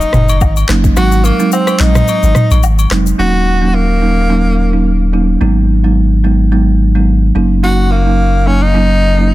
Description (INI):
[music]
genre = afrobeats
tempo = 108 BPM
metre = 4/4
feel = swing 55% on 16ths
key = Eb minor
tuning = A4 = 440 Hz
[part]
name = breathy tenor saxophone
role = melody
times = 0.0-9.3 s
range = Bb3 to Gb4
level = -16 LUFS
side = left 1 dB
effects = tape echo
[part]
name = punchy sub bass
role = bass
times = 0.0-9.3 s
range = Eb1 to Bb1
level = -12 LUFS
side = equal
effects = none
[part]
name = afro-pop drum kit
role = drums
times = 0.0-3.2 s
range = handclaps, kick drum, rim click, shaker, toms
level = -15 LUFS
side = equal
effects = none
[part]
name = agogo bells and woodblock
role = percussion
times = 0.3-2.9 s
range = none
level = -23 LUFS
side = left 8 dB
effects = none
[part]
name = folk marimba with medium mallets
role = accompaniment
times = 0.7-9.3 s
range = Gb3 to Eb4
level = -14 LUFS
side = right 3 dB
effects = none
[sound]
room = small room ambience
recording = dense, heavily limited modern master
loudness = -9 LUFS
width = side -16 dB against mid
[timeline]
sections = 0.0-3.2 A section; 3.2-9.3 B section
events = kick muted 1.0-3.2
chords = 0.0 Ebm7; 1.0 Ab7; 3.2 Ebm7; 5.4 Abm7; 7.4 Ebm7/Gb